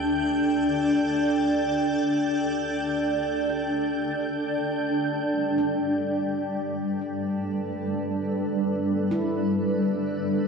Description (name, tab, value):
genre	ambient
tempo	free time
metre	none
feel	none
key	G major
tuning	A4 = 440 Hz
part	granular cloud pad	sustained chords	0.0-10.5 s	G3 to G5	-23 LUFS	equal	built-in reverb
part	handpan	arpeggios	0.0-10.5 s	D4 to A4	-37 LUFS	right 1 dB	ping-pong delay
part	warm studio double bass section	bass	0.0-4.9 s	D2	-46 LUFS	equal	none
part	wind-like tuned noise texture	texture	0.0-5.0 s	G6	-36 LUFS	right 2 dB	built-in reverb
room	wet cathedral reverb, RT60 4.9 s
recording	in a vast, echoing space, cassette tape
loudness	-23 LUFS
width	side -5 dB against mid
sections	0.0-4.9 A section; 4.9-10.5 B section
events	fade-out on double bass section 0.0-4.9; fade-in on handpan 4.9-10.5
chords	0.0 Dsus4; 4.9 G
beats	free time